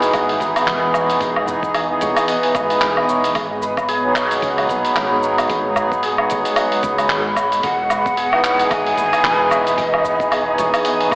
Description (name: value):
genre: organic downtempo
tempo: 112 BPM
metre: 4/4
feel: swing 58% on 16ths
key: unclear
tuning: A4 = 441 Hz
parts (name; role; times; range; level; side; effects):
- hand-pumped harmonium; accompaniment; 0.0-11.2 s; E3 to G#4; -19 LUFS; equal; sidechain pumping, analog delay
- granular cloud pad; sustained chords; 0.0-11.2 s; E3 to G#5; -27 LUFS; equal; built-in reverb, sidechain pumping
- santur; arpeggios; 0.0-11.2 s; D#4 to F#5; -22 LUFS; equal; analog delay
- woody fretless electric bass; bass; 0.0-11.2 s; E1 to C#2; -30 LUFS; equal; lush chorus, sidechain pumping
- dusty soul sampler-style drum kit; drums; 0.0-11.2 s; cabasa, handclaps, hi-hat, woodblock; -21 LUFS; equal; none
- electronic kick drum; drums; 0.1-11.2 s; none; -32 LUFS; equal; none
- udu; percussion; 1.5-11.2 s; none; -46 LUFS; equal; none
- breathy ney; melody; 7.6-10.8 s; D#5 to B5; -19 LUFS; equal; analog delay
room: wet cathedral reverb, RT60 5.1 s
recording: dreamy mix soaked in reverb, AM radio sound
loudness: -15 LUFS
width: side -24 dB against mid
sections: 0.0-11.2 A section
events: none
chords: 0.0 Emaj7; 3.4 G#m7; 7.6 Emaj7